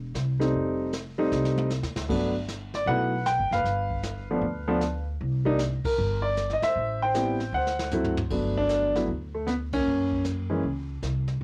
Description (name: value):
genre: jazz piano trio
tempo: 155 BPM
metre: 4/4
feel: swing 66% on 8ths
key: G major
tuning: A4 = 440 Hz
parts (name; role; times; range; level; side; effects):
- upright bass; bass; 0.0-11.4 s; E1 to F#2; -33 LUFS; equal; tube saturation
- jazz brush drum kit; drums; 0.1-11.4 s; brushed snare drum, crash cymbal, hi-hat, kick drum, ride cymbal, snare drum, toms; -38 LUFS; equal; none
- warm grand piano; melody; 0.4-10.6 s; E3 to G5; -28 LUFS; equal; cassette tape
room: little or no reverb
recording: home recording on cassette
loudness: -27 LUFS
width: mono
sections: 0.0-8.3 A section; 8.3-11.4 B section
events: drum fill 1.3-2.1, 7.5-8.3; band accent 5.8, 9.7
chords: 0.0 Am7; 0.5 F9; 2.1 Gmaj7; 3.7 G7; 5.2 C7(no3); 6.8 Am7; 7.5 D7; 8.3 Gmaj9; 9.9 F#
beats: 0.15 | 0.54 0.93 1.32 1.71 | 2.10 2.49 2.88 3.26 | 3.65 4.04 4.43 4.82 | 5.21 5.59 5.98 6.37 | 6.76 7.15 7.53 7.92 | 8.31 8.70 9.09 9.47 | 9.86 10.25 10.64 11.03 | 11.41